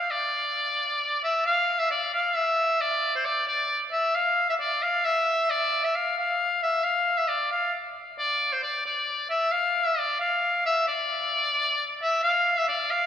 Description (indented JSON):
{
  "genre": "medieval",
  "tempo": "89 BPM (dotted quarters)",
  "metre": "6/8",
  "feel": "straight",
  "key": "D minor",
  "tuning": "A4 = 440 Hz",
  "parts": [
    { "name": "bright shawm", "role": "solo", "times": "0.0-13.1 s", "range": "C5 to F5", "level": "-23 LUFS", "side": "left 1 dB", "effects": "none" }
  ],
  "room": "wet church reverb, RT60 3.6 s",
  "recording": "studio reverb",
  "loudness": "-23 LUFS",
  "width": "side -9 dB against mid",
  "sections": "0.0-1.5 A section; 1.5-12.2 B section",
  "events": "none",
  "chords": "none"
}